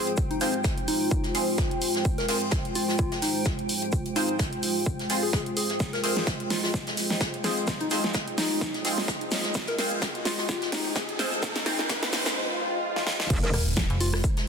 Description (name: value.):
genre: bass house.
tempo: 128 BPM.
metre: 4/4.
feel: swing 56% on 16ths.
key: F minor.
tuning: A4 = 440 Hz.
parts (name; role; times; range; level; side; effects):
soft struck synth lead; melody; 0.0-14.2 s; Eb4 to Bb4; -33 LUFS; left 2 dB; chorus, tape echo.
dark analog pad; sustained chords; 0.0-14.5 s; Ab3 to Eb5; -34 LUFS; equal; chorus, sidechain pumping.
band-passed chord stab; stabs; 0.0-11.8 s; C4 to C5; -33 LUFS; right 1 dB; phaser, lush chorus, sidechain pumping, tape echo.
granular cloud pad; texture; 0.0-14.5 s; F4 to G5; -35 LUFS; right 1 dB; built-in reverb, sidechain pumping.
big-room dance drum kit; drums; 0.1-14.5 s; crash cymbal, hi-hat, rim click, snare drum; -30 LUFS; right 1 dB; none.
soft brush drum kit; drums; 0.1-14.5 s; hi-hat, shaker, snare drum; -34 LUFS; left 1 dB; sidechain pumping on hats, high-pass filter on hats, high-pass filter on snare, sidechain pumping on perc, high-pass filter on perc, high-pass filter on room.
electronic kick drum; drums; 0.2-14.3 s; none; -28 LUFS; equal; none.
riser, swell and impact; sound effects; 8.7-14.5 s; none; -34 LUFS; equal; none.
metallic wobble bass; bass; 13.3-13.5 s; F1; -28 LUFS; equal; chorus, tube saturation, sidechain pumping.
metallic FM bass; bass; 13.5-14.2 s; Eb1 to F1; -26 LUFS; equal; tube saturation, sidechain pumping.
room: moderate lush hall reverb, RT60 2.1 s.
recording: dense, heavily limited modern master, high-pass filter.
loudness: -24 LUFS.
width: side -6 dB against mid.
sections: 0.0-13.3 A section; 13.3-14.5 B section.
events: build-up 0.0-13.3; filter sweep 0.0-13.3; drum fill 5.8-12.4, 12.9-13.3; riser 8.7-12.4; swell 12.4-13.3; drop 13.3-14.5; impact 13.3-14.5.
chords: 0.0 Fm.